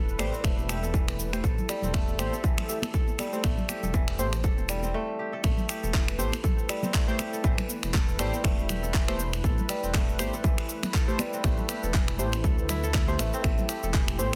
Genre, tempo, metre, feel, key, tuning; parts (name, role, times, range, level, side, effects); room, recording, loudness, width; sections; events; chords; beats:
afro house; 120 BPM; 4/4; swing 56% on 16ths; A minor; A4 = 440 Hz
warm analog pad; sustained chords; 0.0-14.4 s; A3 to B4; -41 LUFS; equal; chorus, sidechain pumping
kora; arpeggios; 0.0-14.4 s; E3 to A4; -37 LUFS; equal; sidechain pumping, delay
dark detuned saw bass; bass; 0.0-14.3 s; E1 to D2; -34 LUFS; equal; sidechain pumping
electronic shaker, finger snaps and handclaps; drums; 0.1-14.4 s; -36 LUFS; equal; soft clipping on snare
warm analog keys; stabs; 0.2-14.3 s; A3 to E5; -37 LUFS; equal; chorus, sidechain pumping, delay
congas; percussion; 0.2-14.4 s; -40 LUFS; equal
electronic kick drum; drums; 0.4-14.1 s; -28 LUFS; equal
light reverb, digital ambience; dense, heavily limited modern master; -27 LUFS; mono
0.0-5.4 A section; 5.4-14.4 B section
break 4.9-5.4; drop 5.4-14.4
0.0 Am7
0.44 0.94 | 1.44 1.94 2.44 2.94 | 3.44 3.94 4.44 4.94 | 5.44 5.94 6.44 6.94 | 7.44 7.94 8.44 8.94 | 9.44 9.94 10.44 10.94 | 11.44 11.94 12.44 12.94 | 13.44 13.94